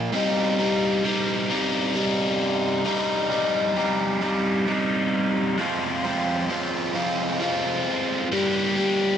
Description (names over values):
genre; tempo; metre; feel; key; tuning
rock; 44 BPM (dotted quarters); 6/8; straight; C minor; A4 = 440 Hz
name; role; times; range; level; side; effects
biting overdriven guitar; solo; 0.0-9.2 s; C2 to Bb4; -21 LUFS; equal; phaser
room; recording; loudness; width
wet studio reverb, RT60 0.5 s; band playing live in one room; -21 LUFS; side -8 dB against mid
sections
0.1-9.2 A section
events
none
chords
0.1 Cm; 5.6 Fm; 8.3 Gm